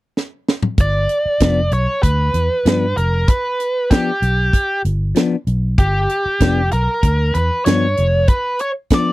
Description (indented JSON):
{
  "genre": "straight-eighth soul blues",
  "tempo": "96 BPM",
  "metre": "4/4",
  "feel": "straight",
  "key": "G mixolydian",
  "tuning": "A4 = 440 Hz",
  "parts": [
    { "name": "tight funk drum kit", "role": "drums", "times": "0.2-9.1 s", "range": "hi-hat, kick drum, snare drum, toms", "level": "-15 LUFS", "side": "equal", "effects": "none" },
    { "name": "biting lead guitar", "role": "melody", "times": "0.8-9.1 s", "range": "G4 to D5", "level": "-18 LUFS", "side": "right 1 dB", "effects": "overdrive" },
    { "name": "vintage muted fingered electric bass", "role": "bass", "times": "0.8-8.3 s", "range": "F1 to G2", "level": "-18 LUFS", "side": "equal", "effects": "none" },
    { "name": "semi-hollow electric guitar", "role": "stabs", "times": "1.4-9.1 s", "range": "F3 to D4", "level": "-18 LUFS", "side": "left 4 dB", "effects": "none" }
  ],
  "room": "little or no reverb",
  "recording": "dry, close 1970s-style studio recording",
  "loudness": "-14 LUFS",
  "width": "side -18 dB against mid",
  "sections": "0.8-9.1 A section",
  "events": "drum fill 0.2-0.8",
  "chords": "0.0 N.C.; 0.8 G7",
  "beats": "0.15 | 0.78 1.40 2.03 2.65 | 3.28 3.91 4.53 5.16 | 5.79 6.41 7.04 7.66 | 8.29 8.91"
}